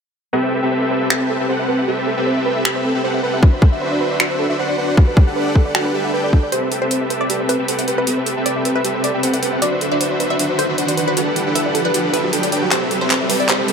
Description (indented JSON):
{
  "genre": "future bass",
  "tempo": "155 BPM",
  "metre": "4/4",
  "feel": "swing 53% on 16ths, half-time",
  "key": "A dorian",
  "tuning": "A4 = 440 Hz",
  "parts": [
    { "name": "soft round pluck", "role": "arpeggios", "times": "0.3-13.7 s", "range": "F#4 to G5", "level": "-25 LUFS", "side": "right 4 dB", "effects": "chorus, sidechain pumping, tape echo" },
    { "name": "dense compressed supersaw", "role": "riff", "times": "0.3-13.7 s", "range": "C4 to G5", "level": "-18 LUFS", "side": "equal", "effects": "sidechain pumping, low-pass filter" },
    { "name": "pop drum kit", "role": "drums", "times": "1.1-13.7 s", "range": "finger snaps, handclaps, hi-hat", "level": "-22 LUFS", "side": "equal", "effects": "none" },
    { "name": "electronic kick drum", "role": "drums", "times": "3.4-6.4 s", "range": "none", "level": "-11 LUFS", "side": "equal", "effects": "overdrive" },
    { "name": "wide unison pluck", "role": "melody", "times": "6.5-13.7 s", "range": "B4 to E5", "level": "-23 LUFS", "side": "left 1 dB", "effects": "sidechain pumping, ping-pong delay" },
    { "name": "riser", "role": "sound effects", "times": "8.2-13.7 s", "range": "none", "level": "-26 LUFS", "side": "right 2 dB", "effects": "none" }
  ],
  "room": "light reverb",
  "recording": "high-pass filter",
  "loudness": "-15 LUFS",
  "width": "side -6 dB against mid",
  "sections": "0.3-6.5 A section; 6.5-13.7 B section",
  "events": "build-up 6.5-13.7; filter sweep on synth arpeggio sound 6.5-13.7; riser 8.2-13.7; drum fill 12.7-13.7",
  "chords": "0.3 Am9; 3.4 D13; 5.0 Gmaj9; 6.5 Am9; 9.6 D13; 11.2 Gmaj9; 12.7 Am9",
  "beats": "| 0.33 0.72 1.10 1.49 | 1.88 2.27 2.65 3.04 | 3.43 3.81 4.20 4.59 | 4.97 5.36 5.75 6.14 | 6.52 6.91 7.30 7.68 | 8.07 8.46 8.85 9.23 | 9.62 10.01 10.39 10.78 | 11.17 11.55 11.94 12.33 | 12.72 13.10 13.49"
}